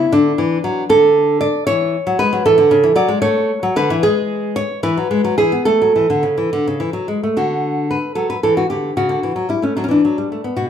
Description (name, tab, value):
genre	classical, baroque-style dance for nylon-string guitar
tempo	70-78 BPM (dotted quarters)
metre	6/8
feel	rubato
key	A major, D major from 7.4 s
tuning	A4 = 440 Hz
part	nylon-string guitar	solo	0.0-10.7 s	B2 to D5	-14 LUFS	equal	none
room	wet large studio reverb, RT60 0.9 s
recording	band playing live in one room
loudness	-14 LUFS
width	side -8 dB against mid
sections	0.0-7.4 A section; 7.4-10.7 A section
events	none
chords	0.1 Dadd9; 0.9 N.C.; 1.7 E; 2.5 A; 3.2 Dmaj13; 4.0 N.C.; 4.8 E; 5.7 A; 7.4 D; 9.0 A7/C#; 9.8 D